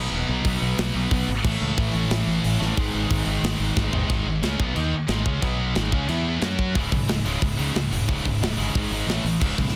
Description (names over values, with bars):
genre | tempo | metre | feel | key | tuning
heavy metal | 181 BPM | 4/4 | straight | C# minor | A4 = 442 Hz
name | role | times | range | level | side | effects
scooped high-gain guitar | riff | 0.0-9.7 s | C#2 to F#4 | -31 LUFS | equal | distortion
scooped high-gain guitar | riff | 0.0-9.7 s | C#2 to F#4 | -31 LUFS | equal | distortion
scooped high-gain guitar | riff | 0.0-9.8 s | C#2 to B4 | -34 LUFS | equal | distortion
growling fingered electric bass | bass | 0.0-9.7 s | C#1 to F#2 | -30 LUFS | equal | overdrive
tight metal drum kit | drums | 0.4-9.7 s | crash cymbal, hi-hat, kick drum, snare drum, toms | -29 LUFS | equal | none
room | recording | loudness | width
little or no reverb | dense, heavily limited modern master | -24 LUFS | mono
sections
0.0-4.1 A section; 4.1-6.8 B section; 6.8-9.8 C section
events
half time 0.0-4.1; drum fill 3.8-4.1, 6.6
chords
0.0 B; 1.4 A; 2.8 G#m; 4.1 G#5; 5.4 B5; 5.8 G#5; 6.1 E5; 6.4 F#5; 6.8 C#m; 8.7 G#5; 9.1 A5